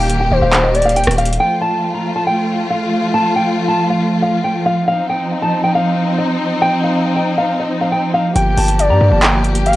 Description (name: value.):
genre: hip hop, trap.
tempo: 138 BPM.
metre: 4/4.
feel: half-time.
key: unclear.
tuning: A4 = 440 Hz.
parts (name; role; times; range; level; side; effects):
nylon-string guitar; melody; 0.0-9.8 s; Eb5 to Bb5; -18 LUFS; equal; low-pass filter, tape echo.
gliding portamento lead; second line; 0.0-1.0, 8.4-9.8 s; C5 to G5; -18 LUFS; left 2 dB; chorus, tape echo.
warm symphonic string section; sustained chords; 0.0-9.8 s; Eb3 to G4; -17 LUFS; equal; none.
hard-hitting 808-style bass; bass; 0.0-1.4, 8.4-9.8 s; Eb1 to G2; -15 LUFS; equal; none.
booming analog drum machine; drums; 0.1-1.4, 8.4-9.8 s; handclaps, hi-hat, rim click; -18 LUFS; equal; overdrive.
room: light reverb.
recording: dry, gritty hardware recording, transformer saturation, cassette tape.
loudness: -13 LUFS.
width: side -16 dB against mid.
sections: 0.0-1.4 A section; 1.4-9.8 A section.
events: none.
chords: 0.0 Eb; 1.4 Fadd9; 4.9 Cm; 8.4 Gm.